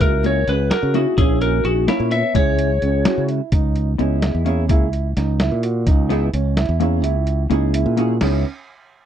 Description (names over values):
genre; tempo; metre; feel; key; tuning
progressive instrumental, band music in an uneven meter; 256 BPM (eighths); 5/8; straight; C# dorian; A4 = 439 Hz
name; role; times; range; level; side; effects
lightly driven lead guitar; melody; 0.0-3.3 s; E4 to E5; -21 LUFS; left 3 dB; none
vibraphone with hard mallets; second line; 0.0-3.3 s; C#4 to C#5; -28 LUFS; left 11 dB; none
hollow-body jazz guitar; accompaniment; 0.0-8.4 s; G#3 to A#4; -22 LUFS; equal; double-tracked left and right
dark baby grand piano; arpeggios; 0.0-8.4 s; B3 to G#4; -26 LUFS; right 13 dB; none
modern bright fingered electric bass; bass; 0.0-8.4 s; A#1 to C#3; -19 LUFS; equal; none
lo-fi sampler-style drum kit; drums; 0.0-8.3 s; crash cymbal, hi-hat, kick drum, snare drum; -20 LUFS; equal; none
room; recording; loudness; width
little or no reverb; dry, close 1970s-style studio recording; -16 LUFS; side -9 dB against mid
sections
0.0-3.5 A section; 3.5-8.2 B section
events
kick and snare drop out 7.0-8.2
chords
0.0 F#7/C#; 1.2 A#m7b5; 2.4 C#m; 3.5 C#m7; 4.7 F#7/C#; 5.9 C#m7; 7.0 F#7/C#; 8.2 C#m7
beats
| 0.01 0.24 0.48 0.71 0.95 | 1.18 1.42 1.65 1.89 2.12 | 2.35 2.59 2.82 3.06 3.29 | 3.53 3.76 4.00 4.23 4.46 | 4.70 4.93 5.17 5.40 5.64 | 5.87 6.11 6.34 6.57 6.81 | 7.04 7.28 7.51 7.74 7.98 | 8.21